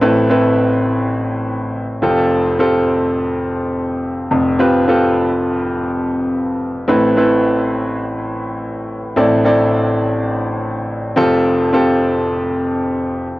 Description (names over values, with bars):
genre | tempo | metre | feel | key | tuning
pop | 105 BPM | 4/4 | straight | A minor | A4 = 441 Hz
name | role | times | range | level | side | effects
clear baby grand piano | solo | 0.0-13.4 s | F1 to D5 | -14 LUFS | equal | cassette tape
room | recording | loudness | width
wet booth ambience, RT60 0.2 s | home recording on cassette | -14 LUFS | side -18 dB against mid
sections
0.0-13.4 A section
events
none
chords
0.0 Amadd9; 2.0 Fadd9; 6.9 Amadd9; 11.2 Fadd9